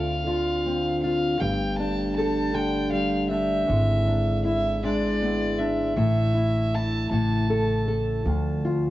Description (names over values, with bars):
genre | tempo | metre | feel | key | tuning
acoustic folk duo or small band | 52 BPM (dotted quarters) | 6/8 | straight | D minor | A4 = 441 Hz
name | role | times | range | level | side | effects
warm fiddle | melody | 0.0-7.9 s | D5 to A5 | -29 LUFS | equal | cassette tape, analog delay
nylon-string guitar | accompaniment | 0.0-8.9 s | D2 to A4 | -26 LUFS | left 1 dB | cassette tape
mellow tonewheel organ | sustained chords | 0.0-8.9 s | C#3 to G4 | -31 LUFS | right 1 dB | slow rotary speaker, cassette tape
upright bass | bass | 0.0-8.9 s | G1 to D2 | -28 LUFS | equal | none
room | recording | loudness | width
wet studio reverb, RT60 0.7 s | home recording on cassette, nothing above 7.5 kHz | -22 LUFS | side -15 dB against mid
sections
0.0-8.9 A section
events
none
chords
0.0 Dm7; 1.4 Gsus2; 3.7 E7/G#; 6.0 Asus4; 7.1 A; 8.2 Dm